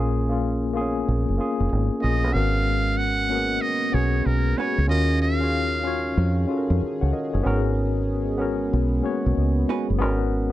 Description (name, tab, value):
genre	R&B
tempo	94 BPM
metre	4/4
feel	swing 64% on 16ths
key	G# dorian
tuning	A4 = 439 Hz
part	tine electric piano	accompaniment	0.0-10.5 s	A#3 to F#5	-25 LUFS	left 3 dB	medium stereo tremolo
part	deep dub fingered electric bass	bass	0.0-10.5 s	E#1 to E#2	-23 LUFS	right 1 dB	none
part	trumpet with metal mute	melody	2.0-6.4 s	A#4 to F#5	-26 LUFS	right 2 dB	none
part	chorused pulse-width pad	sustained chords	2.3-10.5 s	D#3 to E#5	-30 LUFS	right 2 dB	none
part	vintage hollow-body jazz guitar	second line	4.6-4.8, 9.7-9.9 s	C#4 to B4	-28 LUFS	right 7 dB	none
room	light reverb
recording	dry, close 1970s-style studio recording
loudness	-20 LUFS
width	side -14 dB against mid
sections	0.0-10.5 A section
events	none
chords	0.0 A#m7; 2.3 G#m11; 4.9 D#m9; 7.4 G#m11